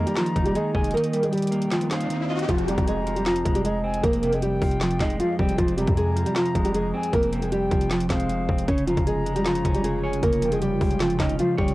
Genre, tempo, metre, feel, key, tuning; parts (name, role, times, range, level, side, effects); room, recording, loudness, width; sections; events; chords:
hip hop, trap; 155 BPM; 4/4; half-time; A4 = 440 Hz
nylon-string guitar; melody; 0.0-11.7 s; F3 to Eb5; -24 LUFS; equal; analog delay
reedy jazz flute; second line; 0.0-11.7 s; F5 to Bb5; -33 LUFS; left 3 dB; analog delay
clean electric guitar; accompaniment; 0.0-11.7 s; F2 to Eb5; -28 LUFS; right 2 dB
hard-hitting 808-style bass; bass; 0.0-11.7 s; F1 to F2; -28 LUFS; equal
trap drum kit; drums; 0.1-11.7 s; handclaps, hi-hat, kick drum, snare drum; -27 LUFS; equal; cassette tape
riser; sound effects; 1.7-2.5 s; -32 LUFS; left 2 dB
glassy FM pad; sustained chords; 9.7-11.7 s; F3 to F4; -34 LUFS; right 2 dB; ensemble chorus, built-in reverb
little or no reverb; home recording on cassette; -21 LUFS; side -18 dB against mid
0.0-2.5 A section; 2.5-11.7 B section
kick muted 0.9-2.5; riser 1.7-2.5
0.0 Eb/F; 8.7 Db/F